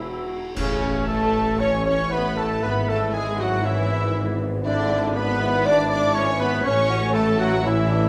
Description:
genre	classical, dramatic, fast romantic movement for symphony orchestra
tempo	119 BPM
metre	4/4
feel	rubato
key	A major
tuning	A4 = 440 Hz
part	rich symphonic violin section	melody	0.0-8.1 s	G#4 to D6	-34 LUFS	equal	none
part	mellow hollow small flute group	second line	0.0-8.1 s	C#4 to E6	-31 LUFS	equal	none
part	rich symphonic violin section	second line	0.0-8.1 s	C#4 to D5	-36 LUFS	equal	none
part	warm oboe	second line	0.0-8.1 s	C#4 to B5	-33 LUFS	equal	none
part	mellow bassoon	accompaniment	0.0-8.1 s	E3 to F#4	-32 LUFS	equal	none
part	rich symphonic viola section	accompaniment	0.0-8.1 s	C#3 to E4	-32 LUFS	equal	none
part	warm French horn section	sustained chords	0.0-8.1 s	C#3 to F#4	-31 LUFS	equal	none
part	concert harp	arpeggios	0.0-8.1 s	G#2 to B4	-40 LUFS	equal	none
part	mellow tuba	bass	0.0-8.1 s	E1 to A1	-32 LUFS	equal	none
part	rich symphonic double bass section	bass	0.0-8.1 s	E1 to A1	-33 LUFS	equal	none
part	warm symphonic cello section	bass	0.0-8.1 s	E2 to A2	-31 LUFS	equal	none
part	mellow trumpet section	stabs	0.6-8.1 s	C#4 to D5	-30 LUFS	equal	none
part	clash cymbals and concert bass drum	percussion	0.6-1.6 s	none	-36 LUFS	equal	none
room	wet recital hall reverb, RT60 1.2 s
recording	none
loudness	-22 LUFS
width	mono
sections	0.6-8.1 A section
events	band accent 0.6-1.1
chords	0.0 E; 0.6 A; 2.6 E/G#; 6.6 A

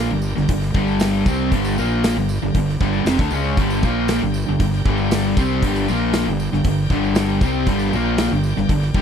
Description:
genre	classic rock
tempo	117 BPM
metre	4/4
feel	straight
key	G minor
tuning	A4 = 440 Hz
part	bright tonewheel organ	sustained chords	0.0-9.0 s	D4 to G5	-33 LUFS	equal	slow rotary speaker, overdrive
part	biting overdriven guitar	riff	0.0-9.0 s	F2 to C#4	-22 LUFS	left 12 dB	none
part	crunchy overdriven guitar	riff	0.0-9.0 s	F2 to C#4	-22 LUFS	right 10 dB	none
part	fuzz fingered electric bass	bass	0.0-9.0 s	F1 to D2	-24 LUFS	equal	overdrive
part	tambourine	percussion	0.2-8.9 s	none	-40 LUFS	right 7 dB	none
part	big rock drum kit	drums	0.4-9.0 s	hi-hat, kick drum, snare drum	-20 LUFS	equal	none
room	studio ambience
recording	dry, close 1970s-style studio recording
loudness	-16 LUFS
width	side -7 dB against mid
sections	0.0-9.0 A section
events	none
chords	0.0 Gm

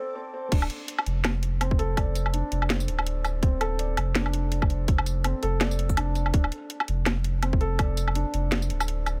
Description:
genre	half-time drum and bass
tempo	165 BPM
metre	4/4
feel	swing 57% on 16ths, half-time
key	unclear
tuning	A4 = 439 Hz
part	felt-muted upright piano	arpeggios	0.0-9.2 s	C4 to D5	-36 LUFS	equal	digital delay
part	saturated sub bass	bass	0.5-9.2 s	D1 to F1	-29 LUFS	equal	high-pass filter
part	drum and bass drum kit	drums	0.5-9.1 s	crash cymbal, hi-hat, snare drum, tambourine, woodblock	-31 LUFS	equal	overdrive
part	electronic kick drum	drums	0.5-7.9 s	none	-26 LUFS	equal	overdrive
room	little or no reverb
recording	high-pass filter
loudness	-26 LUFS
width	mono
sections	0.5-9.2 A section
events	break 0.0-0.5; drop 0.5-9.2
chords	0.0 D7(no3); 0.5 Dm7

